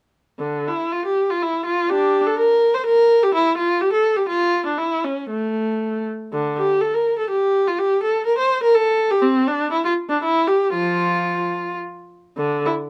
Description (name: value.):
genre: classical, baroque-style suite movement for unaccompanied viola.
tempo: 100-128 BPM.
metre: 3/4.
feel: rubato.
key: D minor, F major from 6.3 s.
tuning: A4 = 441 Hz.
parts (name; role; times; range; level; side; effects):
rich viola; solo; 0.4-12.7 s; D3 to C5; -20 LUFS; equal; none.
room: light reverb.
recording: none.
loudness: -20 LUFS.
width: mono.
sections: 0.4-12.4 A section.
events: none.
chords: none.